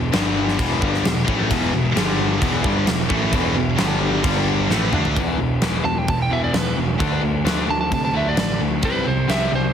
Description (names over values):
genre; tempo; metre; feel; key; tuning
hard rock; 131 BPM; 4/4; straight; E minor; A4 = 441 Hz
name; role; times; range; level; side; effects
crunchy overdriven guitar; riff; 0.0-9.7 s; E2 to D4; -25 LUFS; left 10 dB; spring reverb
heavy high-gain guitar; riff; 0.0-5.2 s; E2 to D4; -24 LUFS; equal; distortion
fuzz picked electric bass; bass; 0.0-9.7 s; E1 to C3; -24 LUFS; equal; overdrive
huge arena drum kit; drums; 0.1-9.4 s; crash cymbal, kick drum, snare drum, toms; -23 LUFS; equal; none
sludgy distorted guitar; riff; 1.5-9.7 s; E2 to D4; -26 LUFS; right 8 dB; overdrive
lightly driven lead guitar; melody; 5.8-9.7 s; B4 to A5; -24 LUFS; right 3 dB; digital delay
room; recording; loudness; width
light reverb, studio reverb; heavily compressed radio sound, multiband compression; -17 LUFS; side -8 dB against mid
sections
0.0-5.2 A section; 5.2-9.7 B section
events
drum fill 4.7-5.2; lead electric guitar solo 5.2-9.7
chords
0.1 G5; 0.6 Em; 2.0 G5; 2.4 Em; 3.8 G5; 4.7 Asus4; 5.2 E5; 7.0 D5; 8.8 C5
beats
0.12 0.58 1.04 | 1.50 1.96 2.42 2.88 | 3.33 3.79 4.25 4.71 | 5.17 5.62 6.08 6.54 | 7.00 7.46 7.92 8.37 | 8.83 9.29